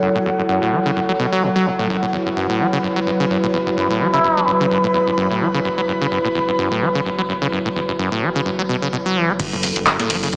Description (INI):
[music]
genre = acid house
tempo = 128 BPM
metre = 4/4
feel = swing 56% on 16ths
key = F# minor pentatonic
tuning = A4 = 445 Hz
[part]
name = dark analog pad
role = sustained chords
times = 0.0-10.4 s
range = F#3 to B4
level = -24 LUFS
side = equal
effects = lush chorus, sidechain pumping
[part]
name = acid bass, saw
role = riff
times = 0.0-10.4 s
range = E2 to A3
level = -23 LUFS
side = equal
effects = tube saturation, diffuse ambient delay
[part]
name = round analog bass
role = bass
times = 0.0-10.4 s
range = F#1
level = -39 LUFS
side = equal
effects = sidechain pumping
[part]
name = ethereal airy pad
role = texture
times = 0.0-9.4 s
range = F#4 to B5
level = -26 LUFS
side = equal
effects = ensemble chorus, built-in reverb, phaser, sidechain pumping
[part]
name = trumpet with cup mute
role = melody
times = 4.1-4.5 s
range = E4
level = -24 LUFS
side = equal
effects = diffuse ambient delay
[part]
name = booming analog drum machine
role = drums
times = 9.4-10.3 s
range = crash cymbal, handclaps, hi-hat, snare drum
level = -21 LUFS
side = equal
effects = none
[part]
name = deep reggae drum kit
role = drums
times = 9.4-10.4 s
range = hi-hat, shaker, snare drum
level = -33 LUFS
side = equal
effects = none
[part]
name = electronic kick drum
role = drums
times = 9.4-10.4 s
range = none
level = -30 LUFS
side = equal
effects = none
[sound]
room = wet plate reverb, RT60 1.1 s, small room reverb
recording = dreamy mix soaked in reverb, small speaker sound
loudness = -19 LUFS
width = mono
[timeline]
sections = 0.0-9.4 A section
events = none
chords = 0.0 F#m7